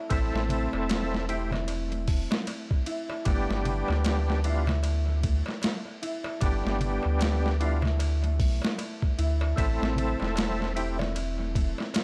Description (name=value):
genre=trip hop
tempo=76 BPM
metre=4/4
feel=swing 59% on 16ths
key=A minor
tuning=A4 = 440 Hz
part: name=concert harp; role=arpeggios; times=0.0-12.0 s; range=A3 to A4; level=-38 LUFS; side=equal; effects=low-pass filter, tape echo
part: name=overdriven tonewheel organ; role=accompaniment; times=0.1-11.0 s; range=G3 to A4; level=-35 LUFS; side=equal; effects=chorus vibrato, tremolo
part: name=soft dub sub bass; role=bass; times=0.1-11.7 s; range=E1 to D2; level=-30 LUFS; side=equal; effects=none
part: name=boom bap sampler-style drum kit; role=drums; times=0.1-12.0 s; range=hi-hat, kick drum, ride cymbal, snare drum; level=-33 LUFS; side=equal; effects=overdrive
part: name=darbuka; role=percussion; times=0.1-12.0 s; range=none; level=-40 LUFS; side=equal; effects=none
room=little or no reverb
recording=dry, gritty hardware recording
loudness=-28 LUFS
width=mono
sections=0.0-12.0 A section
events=filter sweep on harp 0.0-12.0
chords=0.0 Am; 3.3 G; 9.6 Am